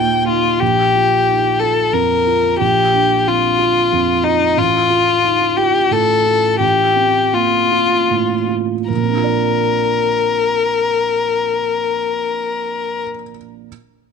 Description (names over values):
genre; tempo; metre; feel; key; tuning
neoclassical piano and strings; 74-92 BPM; 3/4; rubato; Bb major; A4 = 440 Hz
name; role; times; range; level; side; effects
rich violin; melody; 0.0-13.0 s; Eb4 to G5; -14 LUFS; left 5 dB; none
felt-muted upright piano; accompaniment; 0.0-13.7 s; A1 to Eb5; -20 LUFS; right 11 dB; none
room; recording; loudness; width
light reverb; 1960s-style stereo; -13 LUFS; side -6 dB against mid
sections
0.6-8.9 A section; 8.9-13.7 B section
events
slowing down 3.6-8.9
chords
0.0 Ebsus2; 0.6 Bbadd9; 4.6 F/A; 8.9 Bbadd9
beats
| 0.61 1.28 1.94 | 2.60 3.26 3.91 | 4.57 5.24 5.92 | 6.62 7.34 8.10 | 8.90 9.69 10.48 | 11.27 12.07 12.86